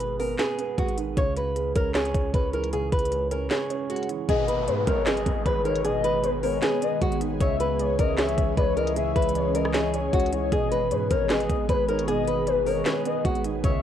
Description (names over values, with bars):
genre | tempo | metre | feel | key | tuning
hip hop, trap | 154 BPM | 4/4 | half-time | G# minor | A4 = 440 Hz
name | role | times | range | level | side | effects
flamenco guitar | melody | 0.0-13.8 s | F#4 to C#5 | -27 LUFS | equal | cassette tape, tape echo
dark grand piano | accompaniment | 0.0-13.8 s | B2 to C#5 | -30 LUFS | right 8 dB | cassette tape
long sustained 808-style bass | bass | 0.0-13.8 s | G#1 to G#2 | -32 LUFS | equal | none
trap drum kit | drums | 0.0-13.7 s | handclaps, hi-hat, kick drum, rim click, snare drum | -27 LUFS | equal | cassette tape
gliding portamento lead | second line | 4.3-13.8 s | B4 to E5 | -28 LUFS | left 10 dB | chorus, cassette tape, tape echo
ethereal airy pad | sustained chords | 5.5-13.8 s | D#3 to G#4 | -32 LUFS | equal | ensemble chorus, built-in reverb, cassette tape
downlifter | sound effects | 4.3-7.4 s | none | -36 LUFS | right 1 dB | none
room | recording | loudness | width
light reverb, digital ambience | home recording on cassette | -22 LUFS | side -10 dB against mid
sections
0.0-4.3 A section; 4.3-13.8 B section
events
kick muted 3.5-4.3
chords
0.0 G#m; 1.2 C#m; 4.3 G#m; 7.4 C#m; 10.5 G#m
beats
0.00 0.39 0.78 | 1.17 1.56 1.95 2.34 | 2.73 3.12 3.51 3.90 | 4.29 4.68 5.07 5.46 | 5.85 6.24 6.62 7.01 | 7.41 7.79 8.18 8.57 | 8.96 9.35 9.74 10.13 | 10.52 10.91 11.30 11.69 | 12.08 12.47 12.86 13.25 | 13.64